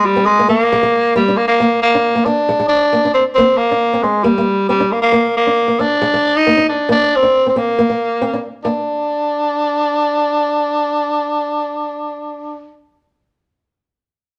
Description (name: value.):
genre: highlife.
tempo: 136 BPM.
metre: 4/4.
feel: straight.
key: Bb mixolydian.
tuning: A4 = 439 Hz.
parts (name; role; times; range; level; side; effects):
growling tenor saxophone; melody; 0.0-12.7 s; G3 to Eb4; -16 LUFS; equal; none.
fingerpicked old ladder-braced acoustic guitar; accompaniment; 0.2-8.8 s; Ab3 to D4; -22 LUFS; equal; none.
room: moderate studio reverb, RT60 0.9 s.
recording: none.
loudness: -15 LUFS.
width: mono.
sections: 0.0-1.6 A section; 1.6-8.6 B section; 8.6-12.2 C section.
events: none.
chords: 0.0 Gmadd11; 0.7 Bb7; 3.4 Gmadd11; 5.1 Bb7; 6.9 Bbadd9; 8.6 N.C..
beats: 0.27 0.71 1.15 | 1.59 2.04 2.48 2.92 | 3.36 3.80 4.24 4.68 | 5.12 5.56 6.00 6.44 | 6.88 7.32 7.76 8.21 | 8.65 9.09 9.53 9.97 | 10.42 10.86 11.30 11.74.